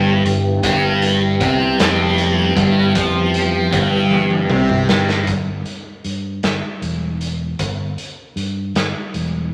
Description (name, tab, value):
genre	psychedelic rock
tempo	52 BPM (dotted quarters)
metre	6/8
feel	straight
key	G mixolydian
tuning	A4 = 441 Hz
part	percussive tonewheel organ	sustained chords	0.0-5.2 s	G3 to G4	-23 LUFS	equal	slow rotary speaker
part	thick fuzz guitar	riff	0.0-5.3 s	F2 to F3	-18 LUFS	equal	distortion, phaser
part	fingered electric bass	bass	0.0-9.5 s	E1 to G2	-25 LUFS	equal	none
part	raw garage drum kit	drums	0.3-9.3 s	hi-hat, kick drum, snare drum, toms	-24 LUFS	equal	none
room	wet studio reverb, RT60 0.6 s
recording	vinyl crackle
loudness	-17 LUFS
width	mono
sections	0.0-5.3 A section; 5.3-9.5 B section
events	drum fill 4.1-5.3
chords	0.0 G; 5.3 N.C.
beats	| 0.64 1.80 | 2.95 4.11 | 5.27 6.43 | 7.59 8.76